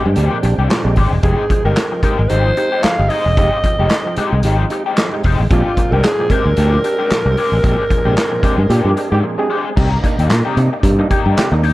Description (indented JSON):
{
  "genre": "funk",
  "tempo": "112 BPM",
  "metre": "4/4",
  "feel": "swing 56% on 16ths",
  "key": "unclear",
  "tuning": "A4 = 440 Hz",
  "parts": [
    { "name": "breathy alto saxophone", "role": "melody", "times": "0.0-9.2 s", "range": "F4 to F5", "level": "-19 LUFS", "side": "equal", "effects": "none" },
    { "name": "raw garage guitar", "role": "accompaniment", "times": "0.0-11.7 s", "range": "Ab3 to Ab4", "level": "-22 LUFS", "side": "left 5 dB", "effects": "wah, overdrive" },
    { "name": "overdriven tonewheel organ", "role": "sustained chords", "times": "0.0-11.7 s", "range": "Ab3 to G5", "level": "-28 LUFS", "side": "equal", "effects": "none" },
    { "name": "overdriven clav", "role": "stabs", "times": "0.0-11.7 s", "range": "Bb2 to G4", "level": "-23 LUFS", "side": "right 3 dB", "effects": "tape echo" },
    { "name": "overdriven fingered electric bass", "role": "bass", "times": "0.1-11.7 s", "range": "E1 to C3", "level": "-15 LUFS", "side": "equal", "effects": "none" },
    { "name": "vintage drum kit", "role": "drums", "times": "0.2-11.7 s", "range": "crash cymbal, handclaps, hi-hat, kick drum, snare drum", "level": "-18 LUFS", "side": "equal", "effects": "none" },
    { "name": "breathy trombone", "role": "second line", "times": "8.7-11.5 s", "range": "G4 to Ab4", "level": "-22 LUFS", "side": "right 2 dB", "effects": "none" }
  ],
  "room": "small room ambience",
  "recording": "none",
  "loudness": "-12 LUFS",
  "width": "side -17 dB against mid",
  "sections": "0.0-9.8 A section; 9.8-11.7 B section",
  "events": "band accent 7.6-9.8; break 9.2-9.8",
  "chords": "0.0 Bb13; 1.2 Fm9; 5.5 Bb13; 9.8 Cm7",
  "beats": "0.17 0.70 | 1.24 1.77 2.31 2.84 | 3.37 3.91 4.44 4.98 | 5.51 6.04 6.58 7.11 | 7.64 8.18 8.71 9.24 | 9.78 10.31 10.84 11.37"
}